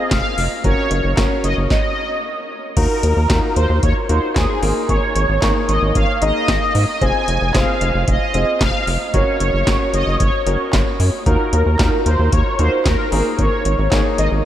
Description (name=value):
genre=synth-pop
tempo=113 BPM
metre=4/4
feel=straight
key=Eb dorian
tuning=A4 = 439 Hz
part: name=mellow synth brass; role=melody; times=0.0-14.3 s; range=Ab4 to Ab5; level=-20 LUFS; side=equal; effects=chorus, phaser, tape echo
part: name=clear concert grand piano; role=accompaniment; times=0.0-14.4 s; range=Bb3 to Db5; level=-22 LUFS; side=left 1 dB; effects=none
part: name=rubbery square bass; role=bass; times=0.1-14.4 s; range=F1 to Ab2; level=-18 LUFS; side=equal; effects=none
part: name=electro analog drum machine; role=drums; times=0.1-14.3 s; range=crash cymbal, handclaps, hi-hat, kick drum, snare drum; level=-20 LUFS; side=equal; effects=none
room=moderate cathedral reverb, RT60 6.0 s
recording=dreamy mix soaked in reverb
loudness=-15 LUFS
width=side -11 dB against mid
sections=0.0-2.8 A section; 2.8-14.4 A section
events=stop 1.7-2.8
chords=0.0 Fm; 0.6 Gb; 1.7 N.C.; 2.8 Ebmadd9; 4.6 Absus2; 7.0 Fm; 9.1 Gb; 11.3 Ebmadd9; 13.1 Absus2